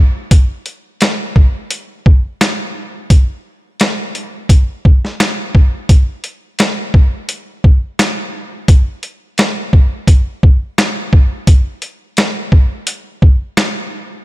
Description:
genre	hip hop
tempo	86 BPM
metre	4/4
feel	swing 55% on 16ths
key	none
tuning	none
part	boom bap sampler-style drum kit	drums	0.3-13.7 s	hi-hat, kick drum, rim click, snare drum	-10 LUFS	equal	none
room	little or no reverb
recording	none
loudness	-11 LUFS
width	side -18 dB against mid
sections	0.0-14.2 A section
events	none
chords	none

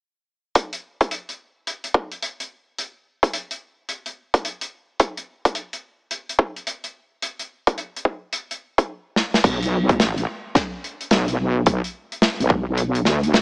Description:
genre	glitch hop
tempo	108 BPM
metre	4/4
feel	swing 63% on 16ths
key	B minor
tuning	A4 = 440 Hz
part	electronic kick drum	drums	0.6-12.6 s	none	-19 LUFS	equal	overdrive, high-pass filter on kick, high-pass filter on room
part	modern studio drum kit	drums	0.6-13.4 s	crash cymbal, hi-hat, snare drum	-22 LUFS	equal	none
part	wobble bass	bass	9.4-13.4 s	A1 to D2	-20 LUFS	equal	chorus
room	little or no reverb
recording	dry, gritty hardware recording, transformer saturation, small speaker sound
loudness	-20 LUFS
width	side -31 dB against mid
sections	0.6-9.4 A section; 9.4-13.4 B section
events	drum fill 9.2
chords	none

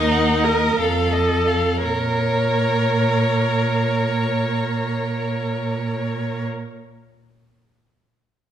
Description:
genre	quick classical-period movement for string quartet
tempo	57 BPM (dotted quarters)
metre	6/8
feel	rubato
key	Bb minor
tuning	A4 = 440 Hz
part	rich violin	melody	0.0-6.4 s	A4 to Db5	-29 LUFS	left 6 dB	none
part	rich violin	second line	0.0-6.4 s	Db5 to Gb5	-27 LUFS	left 3 dB	none
part	rich viola	accompaniment	0.0-6.5 s	Eb4 to Bb4	-22 LUFS	right 2 dB	none
part	clear cello	bass	0.0-6.4 s	Eb2 to Bb2	-22 LUFS	right 2 dB	none
room	wet recital hall reverb, RT60 1.4 s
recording	heard from further back in the room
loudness	-18 LUFS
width	side -10 dB against mid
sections	0.0-1.8 A section; 1.8-6.0 B section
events	slowing down 0.0-1.8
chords	0.0 Ebm; 0.8 F7; 1.8 Bbm

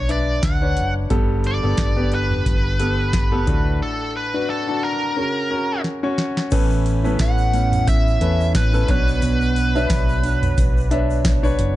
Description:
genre	piano-driven pop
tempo	89 BPM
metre	4/4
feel	swing 56% on 16ths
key	B minor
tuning	A4 = 440 Hz
part	biting lead guitar	melody	0.0-10.9 s	A4 to F#5	-25 LUFS	equal	overdrive, plate reverb
part	clear concert grand piano	accompaniment	0.0-11.8 s	G2 to A5	-24 LUFS	left 2 dB	plate reverb
part	hollow-body short-scale fingered electric bass	bass	0.0-11.8 s	F#1 to E2	-21 LUFS	equal	none
part	booming analog drum machine	drums	0.1-11.8 s	crash cymbal, hi-hat, kick drum, snare drum, toms	-21 LUFS	equal	none
part	fingerpicked steel-string acoustic guitar	riff	6.5-11.8 s	A2 to C#5	-26 LUFS	right 8 dB	none
part	tube shaker	percussion	6.5-11.6 s	none	-44 LUFS	left 8 dB	none
room	little or no reverb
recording	dark, warm production, nothing above 10.4 kHz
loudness	-17 LUFS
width	side -15 dB against mid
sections	0.0-6.5 A section; 6.5-11.8 B section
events	break 3.8-6.5; drum fill 5.8-6.5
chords	0.0 Bmadd9; 1.1 Gadd9; 3.5 D; 5.2 F#; 6.5 Aadd9; 8.9 Bmadd9

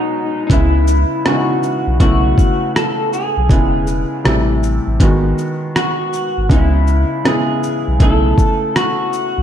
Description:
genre	lo-fi hip hop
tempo	80 BPM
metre	4/4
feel	swing 63% on 16ths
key	unclear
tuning	A4 = 439 Hz
part	electric guitar through a small old amp	melody	0.0-9.4 s	D#4 to A4	-19 LUFS	equal	lush chorus, low-pass filter, tape echo
part	felt-muted upright piano	accompaniment	0.0-9.4 s	B2 to F#4	-18 LUFS	equal	low-pass filter
part	warm sub bass	bass	0.5-9.4 s	E1 to C#2	-16 LUFS	equal	none
part	dusty soul sampler-style drum kit	drums	0.5-9.3 s	hi-hat, kick drum, rim click, shaker	-16 LUFS	equal	overdrive
room	light reverb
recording	none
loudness	-13 LUFS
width	side -9 dB against mid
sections	0.0-9.4 A section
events	none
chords	0.5 C#m7; 2.0 B9sus4; 3.5 E6; 4.2 Am7; 5.0 G#m7; 6.5 C#m7; 8.0 B9sus4

